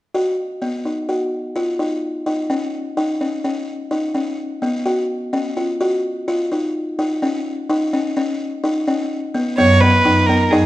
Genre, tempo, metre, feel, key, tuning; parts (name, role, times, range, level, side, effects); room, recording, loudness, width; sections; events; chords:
contemporary instrumental, contemporary; 127 BPM; 5/4; straight; A4 = 440 Hz
buzzing kalimba; arpeggios; 0.1-10.7 s; B3 to F#4; -19 LUFS; left 1 dB
warm violin; melody; 9.6-10.7 s; G#4 to C#5; -14 LUFS; right 2 dB
muted cello; bass; 9.6-10.7 s; F#2; -16 LUFS; right 1 dB
moderate recital hall reverb, RT60 1.3 s; -17 LUFS; side -16 dB against mid
0.1-9.6 A section; 9.6-10.7 B section
0.1 B (rootless); 2.5 N.C.; 4.9 F#5; 7.2 N.C.; 9.6 Bmaj7/F#